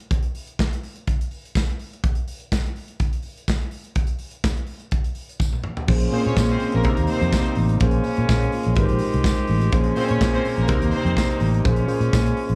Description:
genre	disco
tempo	125 BPM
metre	4/4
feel	straight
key	Bb dorian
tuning	A4 = 441 Hz
part	modern studio drum kit	drums	0.0-12.6 s	crash cymbal, hi-hat, kick drum, snare drum, toms	-26 LUFS	equal	none
part	tambourine	percussion	0.6-12.3 s	none	-41 LUFS	equal	none
part	mellow tine electric piano	accompaniment	5.9-12.6 s	Bb2 to F5	-26 LUFS	equal	none
part	muted French horn section	sustained chords	5.9-12.6 s	C3 to G4	-32 LUFS	equal	none
part	fingered electric bass	bass	5.9-12.6 s	Ab1 to Bb2	-24 LUFS	equal	none
part	clear studio string section	second line	6.1-11.4 s	Bb3 to Db5	-31 LUFS	equal	none
room	small room ambience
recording	live gig heard through the venue's PA, club reverb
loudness	-22 LUFS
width	mono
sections	0.0-5.9 A section; 5.9-12.6 B section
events	drum fill 5.4-5.9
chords	0.0 N.C.; 5.9 Bbm9; 6.8 Cm7; 7.8 Bbm9; 8.8 Abmaj9; 9.7 Bbm9; 10.7 Cm7; 11.7 Bbm9

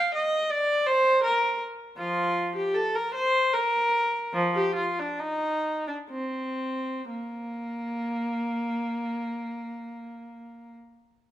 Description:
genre	classical, baroque-style suite movement for unaccompanied viola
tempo	59-84 BPM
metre	3/4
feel	rubato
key	Bb major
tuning	A4 = 440 Hz
part	rich viola	solo	0.0-10.8 s	F3 to F5	-25 LUFS	equal	none
room	moderate recital hall reverb, RT60 1.6 s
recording	none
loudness	-25 LUFS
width	side -13 dB against mid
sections	0.0-7.1 A section; 7.1-10.0 B section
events	slowing down 0.9-7.1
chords	none

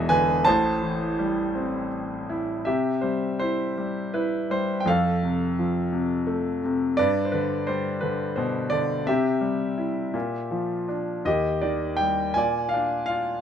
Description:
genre	classical, lyrical solo piano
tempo	56 BPM (dotted quarters)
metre	6/8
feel	uneven beats, rubato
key	C major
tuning	A4 = 440 Hz
part	bright concert grand piano	solo	0.0-13.4 s	E1 to A5	-22 LUFS	equal	none
room	light reverb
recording	none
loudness	-23 LUFS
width	side -8 dB against mid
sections	0.0-2.7 A section; 2.7-11.3 B section; 11.3-13.4 C section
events	none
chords	0.5 Am7; 2.7 C; 4.9 F; 7.0 G; 9.1 C; 10.1 Bb; 11.3 Eb; 12.4 Bb

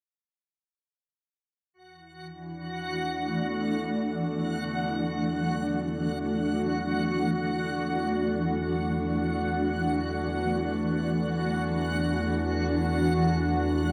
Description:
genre	dark ambient drone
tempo	free time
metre	none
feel	none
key	unclear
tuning	A4 = 440 Hz
part	analog drone	drone	2.1-13.9 s	E2 to E3	-37 LUFS	equal	chorus
part	backwards swelling texture	texture	2.2-13.9 s	F#4 to F#5	-35 LUFS	equal	built-in reverb, analog chorus
part	granular cloud pad	sustained chords	2.3-13.9 s	E3 to F#4	-30 LUFS	equal	built-in reverb
part	quartz singing bowl	arpeggios	3.4-11.2 s	D3 to B3	-45 LUFS	equal	none
room	wet plate reverb, RT60 3.0 s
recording	dreamy mix soaked in reverb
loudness	-28 LUFS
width	mono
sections	1.8-13.9 A section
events	fade-in on synth drone 1.8-13.9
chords	1.8 E5

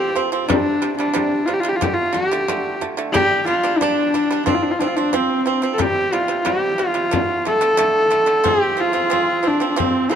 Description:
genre	mongolian traditional, Mongolian folk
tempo	90 BPM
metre	4/4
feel	straight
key	F gong mode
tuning	A4 = 440 Hz
part	rich horsehead fiddle	melody	0.0-10.2 s	C4 to A4	-18 LUFS	left 1 dB	none
part	pipa	arpeggios	0.0-10.2 s	C3 to D4	-22 LUFS	right 5 dB	none
part	frame drum	percussion	0.2-10.0 s	none	-26 LUFS	left 5 dB	none
room	moderate huge ambient reverb, RT60 4.8 s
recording	dark, warm production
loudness	-16 LUFS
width	side -8 dB against mid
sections	0.0-8.5 A section; 8.5-10.2 B section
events	none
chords	0.5 C5; 1.8 D5; 3.1 G5; 4.5 F5; 5.8 C5; 7.1 D5; 8.5 F5

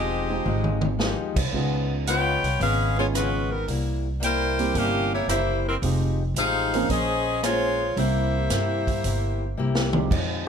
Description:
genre	jazz, big band swing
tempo	112 BPM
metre	4/4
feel	swing 69% on 8ths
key	unclear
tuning	A4 = 440 Hz
part	edgy saxophone section	melody	0.0-9.6 s	G3 to G5	-25 LUFS	left 1 dB	none
part	picked acoustic archtop guitar	accompaniment	0.0-10.5 s	C3 to C5	-31 LUFS	left 6 dB	none
part	upright bass	bass	0.0-10.5 s	E1 to G2	-26 LUFS	equal	none
part	warm concert grand piano	accompaniment	0.3-10.1 s	F3 to G5	-30 LUFS	right 7 dB	none
part	swinging big-band drum kit	drums	0.5-10.3 s	crash cymbal, hi-hat, kick drum, rim click, snare drum, toms	-28 LUFS	right 1 dB	none
room	light reverb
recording	none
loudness	-21 LUFS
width	side -7 dB against mid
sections	0.0-10.1 A section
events	drum fill 0.5-1.0, 9.6-10.1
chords	0.0 Fm9; 1.5 Db7; 3.7 C7; 5.8 Fm9; 6.9 Bbm9; 8.0 C7

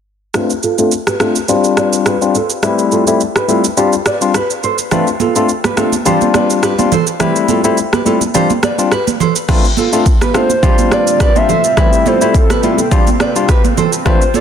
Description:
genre	afrobeats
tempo	105 BPM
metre	4/4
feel	swing 55% on 16ths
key	G mixolydian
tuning	A4 = 440 Hz
part	barky tine electric piano	accompaniment	0.3-14.2 s	G3 to F4	-15 LUFS	left 6 dB	low-pass filter
part	nylon-string guitar	riff	0.3-14.4 s	F4 to D5	-18 LUFS	right 4 dB	low-pass filter, ping-pong delay
part	afro-pop drum kit	drums	0.3-14.4 s	crash cymbal, kick drum, rim click, shaker	-16 LUFS	equal	soft clipping on snare
part	congas	percussion	4.9-14.4 s	none	-18 LUFS	right 11 dB	none
part	granular cloud pad	sustained chords	9.9-14.4 s	C4 to F4	-23 LUFS	left 2 dB	built-in reverb
part	hollow clarinet-like synth lead	melody	10.4-14.4 s	A4 to E5	-16 LUFS	right 1 dB	chorus, ping-pong delay
room	moderate plate reverb, RT60 2.5 s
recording	dense, heavily limited modern master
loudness	-10 LUFS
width	side -8 dB against mid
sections	0.3-9.5 A section; 9.5-14.4 B section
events	filter sweep 0.3-9.5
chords	0.3 Dm7; 1.5 G7sus4; 2.6 Am7; 3.8 G7sus4; 4.9 Dm7; 6.1 G7sus4; 7.2 Am7; 8.3 G7sus4; 9.5 Dm7; 10.6 G7sus4; 11.8 Am7; 12.9 G7sus4

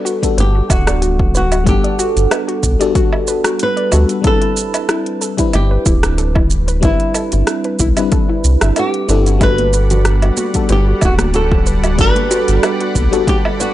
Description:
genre	sunset chillout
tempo	93 BPM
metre	4/4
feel	swing 54% on 16ths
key	G major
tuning	A4 = 440 Hz
part	flamenco guitar	melody	0.0-13.7 s	E4 to B4	-20 LUFS	equal	tape echo
part	mellow FM electric piano	accompaniment	0.0-13.7 s	G3 to F#5	-19 LUFS	moving between left 7 dB and right 5 dB	chorus, phaser, auto-pan, tape echo
part	soft round pluck	arpeggios	0.0-13.7 s	E4 to E5	-24 LUFS	left 3 dB	chorus, tape echo
part	deep house drum kit	drums	0.1-13.7 s	hi-hat, rim click, shaker, woodblock	-20 LUFS	right 2 dB	overdrive
part	electronic kick drum	drums	0.2-13.4 s	none	-17 LUFS	equal	overdrive
part	round analog bass	bass	0.4-13.1 s	D1 to D2	-14 LUFS	equal	none
part	lush unison pad	sustained chords	9.4-13.7 s	G3 to B5	-24 LUFS	right 2 dB	chorus
part	bongos and congas	percussion	9.4-13.6 s	none	-25 LUFS	equal	none
room	digital ambience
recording	dry, gritty hardware recording, transformer saturation, nothing above 10.7 kHz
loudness	-12 LUFS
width	side -14 dB against mid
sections	0.0-13.7 A section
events	none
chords	0.0 Gmaj7; 4.2 Am11; 9.4 Gmaj7

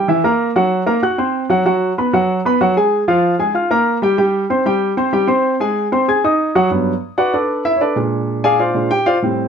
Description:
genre	jazz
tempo	190 BPM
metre	4/4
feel	straight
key	unclear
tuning	A4 = 440 Hz
part	warm baby grand piano	solo	0.0-9.5 s	G2 to Ab6	-14 LUFS	equal	slapback echo
room	light reverb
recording	close, detailed microphones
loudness	-14 LUFS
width	side -7 dB against mid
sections	0.0-6.7 A section; 6.7-9.5 B section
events	grand piano solo 6.7-9.5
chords	0.4 F#; 1.7 F#sus24; 2.9 Bb5; 4.2 Gsus4; 5.4 Ab7; 6.7 Gmaj9; 8.0 Bb9

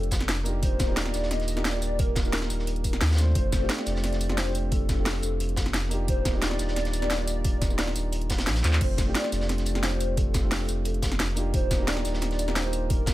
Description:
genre	liquid drum and bass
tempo	176 BPM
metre	4/4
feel	straight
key	F mixolydian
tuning	A4 = 440 Hz
part	hollow clarinet-like synth lead	melody	0.0-13.1 s	A4 to Eb5	-34 LUFS	left 1 dB	analog chorus, dub echo
part	dark concert grand piano	accompaniment	0.0-13.1 s	A3 to C5	-33 LUFS	right 1 dB	none
part	warm sub bass	bass	0.0-13.1 s	Eb1 to Eb2	-28 LUFS	equal	none
part	drum and bass drum kit	drums	0.0-13.1 s	crash cymbal, handclaps, hi-hat, snare drum, tambourine	-30 LUFS	equal	overdrive
part	crunchy breakbeat drum kit	drums	0.1-13.1 s	hi-hat, snare drum	-37 LUFS	equal	high-pass filter on hats, high-pass filter on snare, high-pass filter on room
part	electronic kick drum	drums	0.1-13.1 s	none	-26 LUFS	equal	overdrive
room	little or no reverb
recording	none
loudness	-24 LUFS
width	side -16 dB against mid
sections	0.0-13.1 A section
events	drum fill 8.6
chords	0.0 F69; 0.6 Ebmaj7; 3.4 F69; 6.1 Ebmaj7; 8.8 F69; 11.5 Ebmaj7

